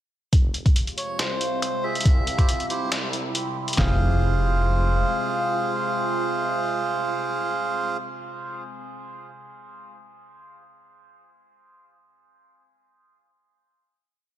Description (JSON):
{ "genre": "deep dubstep", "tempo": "139 BPM", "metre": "4/4", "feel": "half-time", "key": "F harmonic minor", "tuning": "A4 = 440 Hz", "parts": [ { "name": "overtone-sweeping drone", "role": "sustained chords", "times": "0.9-8.0 s", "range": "C3 to F4", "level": "-31 LUFS", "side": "right 1 dB", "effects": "chorus, built-in reverb, phaser" }, { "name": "dark detuned saw bass", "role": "bass", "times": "0.3-5.0 s", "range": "F1 to C2", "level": "-26 LUFS", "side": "equal", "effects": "high-pass filter" }, { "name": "trip hop sampler-style drum kit", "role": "drums", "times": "0.3-3.9 s", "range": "handclaps, kick drum, snare drum, toms", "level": "-20 LUFS", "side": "equal", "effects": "none" }, { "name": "trip hop sampler-style drum kit", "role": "drums", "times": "0.3-3.8 s", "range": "finger snaps, hi-hat, snare drum", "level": "-28 LUFS", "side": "equal", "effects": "high-pass filter on hats, high-pass filter on snare" }, { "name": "melodica", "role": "melody", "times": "1.0-8.0 s", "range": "C5 to F5", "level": "-29 LUFS", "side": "right 1 dB", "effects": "dub echo" }, { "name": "melodica", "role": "stabs", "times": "1.8-8.0 s", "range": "E4 to C5", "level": "-30 LUFS", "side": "right 3 dB", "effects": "vintage 12-bit sampler grit, low-pass filter, dub echo" } ], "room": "light reverb, digital ambience", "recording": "none", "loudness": "-21 LUFS", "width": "side -12 dB against mid", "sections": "0.3-3.8 build; 3.8-7.2 final chord", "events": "build-up 0.3-3.8", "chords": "0.3 Fm; 2.1 C; 3.8 Fm" }